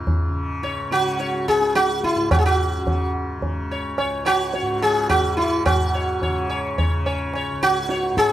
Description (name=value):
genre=indian classical, Hindustani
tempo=107 BPM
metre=3/4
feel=straight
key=unclear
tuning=A4 = 441 Hz
part: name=tanpura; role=drone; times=0.0-8.3 s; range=C#2 to C#3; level=-29 LUFS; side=left 1 dB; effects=none
part: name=tabla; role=percussion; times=0.1-8.3 s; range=none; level=-23 LUFS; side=equal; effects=none
part: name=sitar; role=melody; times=0.6-8.3 s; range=E4 to C#5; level=-20 LUFS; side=equal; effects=none
room=moderate small room reverb, RT60 0.6 s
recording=none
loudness=-19 LUFS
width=side -12 dB against mid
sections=0.0-5.7 A section; 5.7-8.3 B section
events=none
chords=none